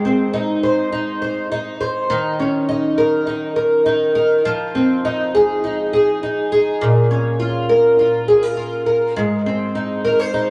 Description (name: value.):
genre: dream pop.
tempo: 102 BPM.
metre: 4/4.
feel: straight.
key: Ab major.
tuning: A4 = 440 Hz.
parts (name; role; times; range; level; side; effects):
fingerpicked twelve-string acoustic guitar; solo; 0.0-10.5 s; Ab2 to C5; -18 LUFS; equal; lush chorus, tape echo.
room: light reverb.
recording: dry, gritty hardware recording, small room ambience.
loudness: -18 LUFS.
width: mono.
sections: 0.0-10.5 A section.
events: none.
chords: 0.0 Ab; 2.1 Eb5; 4.5 Fm7; 6.8 Bbm7; 9.2 Ab.